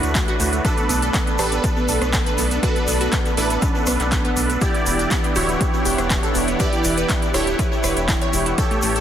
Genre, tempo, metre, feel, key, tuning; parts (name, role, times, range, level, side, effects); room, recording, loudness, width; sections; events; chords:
progressive house; 121 BPM; 4/4; straight; A4 = 440 Hz
lush unison pad; sustained chords; 0.0-9.0 s; D3 to F#5; -27 LUFS; equal; chorus, sidechain pumping
wide unison pluck; arpeggios; 0.0-9.0 s; A3 to C#5; -25 LUFS; right 1 dB; sidechain pumping, dub echo
supersaw stab; stabs; 0.0-9.0 s; D4 to D5; -23 LUFS; right 2 dB; phaser, cassette tape, sidechain pumping, dub echo
round analog bass; bass; 0.0-9.0 s; D1 to D2; -25 LUFS; equal; sidechain pumping
big-room dance drum kit; drums; 0.0-9.0 s; handclaps, hi-hat, rim click; -26 LUFS; right 1 dB; overdrive
egg shaker; percussion; 0.0-9.0 s; -32 LUFS; left 3 dB
electronic kick drum; drums; 0.1-8.7 s; -22 LUFS; equal; overdrive
moderate lush hall reverb, RT60 1.7 s, digital ambience; dense, heavily limited modern master; -17 LUFS; side -10 dB against mid
0.0-9.0 A section
0.0 Dmaj7; 0.6 Bm7; 4.6 Em7